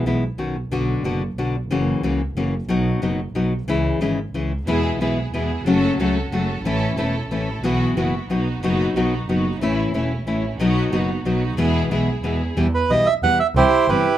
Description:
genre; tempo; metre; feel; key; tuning
tango; 182 BPM; 3/4; rubato; unclear; A4 = 439 Hz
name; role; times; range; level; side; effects
nylon-string guitar; accompaniment; 0.0-14.1 s; B2 to F#4; -21 LUFS; left 2 dB; none
warm double bass; bass; 0.0-14.0 s; E1 to E2; -24 LUFS; right 1 dB; none
rich studio string section; stabs; 4.7-12.6 s; A3 to A4; -27 LUFS; right 2 dB; none
bandoneon; melody; 12.7-14.2 s; E4 to F#5; -16 LUFS; right 4 dB; none
room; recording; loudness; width
moderate small room reverb, RT60 0.5 s; rough home demo mix; -18 LUFS; side -12 dB against mid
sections
0.0-12.6 A section; 12.6-14.2 B section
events
none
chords
0.4 Badd9; 0.7 Bm; 1.7 F#7; 2.7 B; 3.7 C#m; 4.7 E; 5.7 F#m; 6.7 A; 7.6 Bsus4; 8.3 B; 9.6 A; 10.6 B; 11.6 E; 12.6 Em; 13.6 C

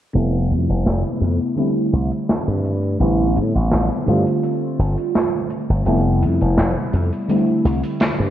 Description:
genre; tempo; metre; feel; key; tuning
vaporwave; 84 BPM; 4/4; straight; unclear; A4 = 441 Hz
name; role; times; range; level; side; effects
FM electric piano with soft pad layer; accompaniment; 0.1-8.3 s; C3 to F4; -20 LUFS; equal; phaser, wide subtle chorus, analog delay
slap bass with an envelope filter; bass; 0.1-8.3 s; F1 to A2; -18 LUFS; equal; none
tight metal drum kit; drums; 0.1-8.2 s; hi-hat, snare drum; -23 LUFS; equal; none
room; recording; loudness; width
light reverb, small room ambience; dark, warm production, low-pass filter; -16 LUFS; side -12 dB against mid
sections
0.1-8.3 A section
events
filter sweep 0.1-8.3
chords
0.1 Fmaj9#11; 1.6 C69; 3.0 Am11; 4.1 G7sus4; 5.9 Fmaj9#11; 7.3 C69

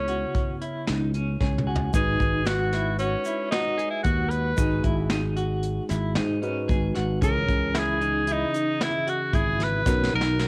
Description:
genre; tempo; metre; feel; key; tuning
progressive instrumental, band music in an uneven meter; 114 BPM; 5/4; straight; unclear; A4 = 440 Hz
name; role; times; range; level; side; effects
bright tenor saxophone; melody; 0.0-10.5 s; C#4 to B4; -29 LUFS; equal; cassette tape
barky tine electric piano; accompaniment; 0.0-10.5 s; B2 to G#5; -34 LUFS; equal; overdrive, cassette tape
clean electric guitar; arpeggios; 0.0-10.5 s; C#4 to G#4; -34 LUFS; equal; tremolo, cassette tape
sustaining fretless electric bass; bass; 0.0-10.5 s; G#1 to G#2; -30 LUFS; equal; lush chorus
soft brush drum kit; drums; 0.1-10.5 s; hi-hat, kick drum, snare drum, toms; -30 LUFS; equal; none
egg shaker; percussion; 1.9-10.5 s; none; -46 LUFS; equal; none
room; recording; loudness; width
light reverb, small room ambience; home recording on cassette; -25 LUFS; mono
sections
0.0-1.9 A section; 1.9-10.5 B section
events
tine electric piano fill 1.1-1.9; drum fill 1.4-1.9, 9.9-10.5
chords
0.0 C#m7; 1.9 G#m7; 7.2 C#m; 9.9 Bmaj7

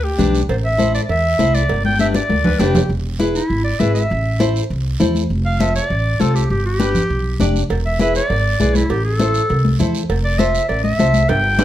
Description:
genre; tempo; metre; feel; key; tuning
latin, cumbia; 200 BPM; 4/4; straight; A minor; A4 = 439 Hz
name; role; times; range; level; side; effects
breathy tenor saxophone; second line; 0.0-0.4, 2.4-2.9 s; G4 to B4; -23 LUFS; left 2 dB; none
upright bass; bass; 0.0-11.6 s; E1 to E2; -19 LUFS; equal; none
flamenco guitar; accompaniment; 0.2-11.6 s; D4 to D5; -21 LUFS; left 2 dB; none
congas; percussion; 0.2-11.6 s; none; -21 LUFS; left 2 dB; none
guiro; percussion; 0.2-11.6 s; none; -32 LUFS; right 7 dB; none
clear clarinet; melody; 0.5-11.6 s; E4 to G5; -19 LUFS; equal; slapback echo, plate reverb
cowbell and timbales; percussion; 0.5-2.8, 7.7-11.6 s; none; -26 LUFS; right 6 dB; none
room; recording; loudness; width
moderate studio reverb, RT60 0.8 s; none; -14 LUFS; side -12 dB against mid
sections
0.0-2.9 A section; 2.9-11.6 B section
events
drum fill 2.1-2.9, 11.3-11.6; clarinet solo 2.9-11.6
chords
0.5 Am; 1.7 G; 2.9 E; 4.1 Am; 5.3 F; 6.5 G; 7.7 E; 8.9 Am; 10.1 F

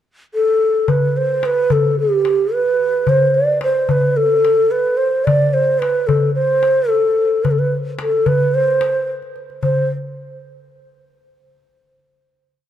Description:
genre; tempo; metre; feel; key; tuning
Arabic maqam ensemble; 110 BPM; 4/4; straight; unclear; A4 = 440 Hz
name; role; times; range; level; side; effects
breathy mellow low ney; melody; 0.3-9.9 s; G4 to D5; -15 LUFS; right 1 dB; none
darbuka; percussion; 0.9-9.9 s; none; -19 LUFS; left 2 dB; none
room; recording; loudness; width
moderate plate reverb, RT60 3.6 s; dark, warm production; -14 LUFS; side -10 dB against mid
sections
0.0-0.9 pickup bar; 0.9-9.6 A section; 9.6-11.8 final note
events
none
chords
none

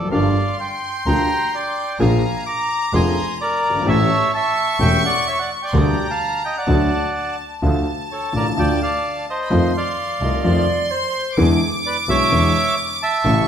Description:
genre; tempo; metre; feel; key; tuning
tango; 128 BPM; 4/4; rubato; G minor; A4 = 440 Hz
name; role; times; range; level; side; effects
bandoneon; melody; 0.0-13.5 s; A4 to D6; -21 LUFS; right 1 dB; none
warm concert grand piano; accompaniment; 0.0-13.4 s; E1 to Ab4; -20 LUFS; left 2 dB; none
clear double bass; bass; 0.0-13.4 s; E1 to F2; -21 LUFS; right 1 dB; none
clear studio violin section; second line; 0.1-13.5 s; A5 to D6; -25 LUFS; left 1 dB; none
reedy silver concert flute; second line; 10.2-11.7 s; G#4 to Eb5; -24 LUFS; right 1 dB; none
room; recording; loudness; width
wet large studio reverb, RT60 1.2 s; band playing live in one room; -16 LUFS; side -8 dB against mid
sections
0.0-7.6 A section; 7.6-13.5 B section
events
none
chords
0.1 Gm7; 2.0 Bb7; 3.9 A7; 5.7 Gm/D; 6.7 D; 7.6 Dm; 9.5 F7; 11.4 E7

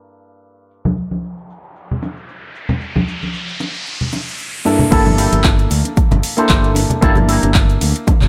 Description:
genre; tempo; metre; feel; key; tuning
nu-disco, nu disco; 114 BPM; 4/4; swing 55% on 16ths; G dorian; A4 = 440 Hz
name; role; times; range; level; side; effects
warm concert grand piano; accompaniment; 0.0-8.3 s; G2 to A5; -21 LUFS; equal; sidechain pumping, dub echo
cabasa, congas and bongos; percussion; 0.7-8.3 s; none; -23 LUFS; equal; none
riser; sound effects; 1.5-4.9 s; none; -29 LUFS; equal; none
electric guitar with an envelope filter; riff; 4.9-8.3 s; Bb3 to C5; -23 LUFS; equal; ensemble chorus, dub echo
modern bright fingered electric bass; bass; 4.9-8.3 s; G1 to D2; -19 LUFS; equal; none
electronic kick drum; drums; 4.9-8.2 s; none; -16 LUFS; equal; overdrive
pop drum kit; drums; 4.9-8.3 s; crash cymbal, handclaps, hi-hat; -23 LUFS; equal; overdrive, low-pass filter on snare, low-pass filter on hats, low-pass filter on cymbals, low-pass filter on room
room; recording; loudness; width
light reverb, digital ambience; low-pass filter; -16 LUFS; mono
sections
0.0-4.9 A section; 4.9-8.3 B section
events
filter sweep 0.0-4.9; riser 1.5-4.9; drop 4.9-8.3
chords
0.0 Gm69

